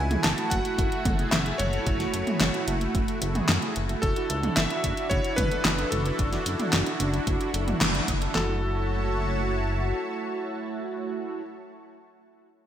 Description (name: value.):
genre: synthwave.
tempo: 111 BPM.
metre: 4/4.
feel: straight.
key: F# minor.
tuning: A4 = 441 Hz.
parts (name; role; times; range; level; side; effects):
bright electric grand piano; melody; 0.0-11.4 s; A4 to A5; -32 LUFS; left 1 dB; digital delay.
lush unison pad; sustained chords; 0.0-11.4 s; A3 to A5; -32 LUFS; left 1 dB; chorus, phaser, sidechain pumping.
chorused synth bass; bass; 0.0-9.9 s; F#1 to F#2; -29 LUFS; equal; none.
mellow synth brass; stabs; 0.1-11.4 s; A3 to B4; -33 LUFS; right 4 dB; chorus, digital delay.
pop drum kit; drums; 0.1-8.3 s; handclaps, hi-hat, snare drum, toms; -27 LUFS; equal; gated reverb.
pop drum kit; drums; 0.5-8.5 s; handclaps, kick drum, snare drum; -29 LUFS; equal; none.
room: moderate plate reverb, RT60 2.3 s.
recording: bright 1980s-style digital production.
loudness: -24 LUFS.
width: side -10 dB against mid.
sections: 0.0-8.4 A section; 8.4-12.7 B section.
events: band accent 7.8.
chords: 0.0 F#m7; 4.0 Dadd9/F#; 8.4 F#m7.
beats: 0.24 0.78 1.32 | 1.86 2.41 2.95 3.49 | 4.03 4.57 5.11 5.65 | 6.19 6.73 7.27 7.81 | 8.35 8.89 9.43 9.97 | 10.51 11.05.